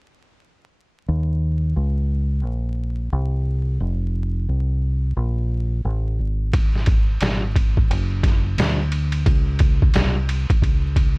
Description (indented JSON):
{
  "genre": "hip hop, jazz-hop",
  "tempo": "88 BPM",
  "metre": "4/4",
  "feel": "swing 64% on 16ths",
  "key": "unclear",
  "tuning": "A4 = 440 Hz",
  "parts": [
    { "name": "deep dub fingered electric bass", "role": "bass", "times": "1.1-11.2 s", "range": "F1 to Eb2", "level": "-21 LUFS", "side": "equal", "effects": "none" },
    { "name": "trip hop sampler-style drum kit", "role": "drums", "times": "6.5-11.2 s", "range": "hi-hat, kick drum, ride cymbal, snare drum", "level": "-18 LUFS", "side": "equal", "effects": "none" }
  ],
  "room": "little or no reverb",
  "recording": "vinyl crackle",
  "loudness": "-18 LUFS",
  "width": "side -36 dB against mid",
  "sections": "1.1-11.2 A section",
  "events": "none",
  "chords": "none",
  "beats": "| 1.08 1.76 2.44 3.13 | 3.81 4.49 5.17 5.85 | 6.54 7.22 7.90 8.58 | 9.26 9.95 10.63"
}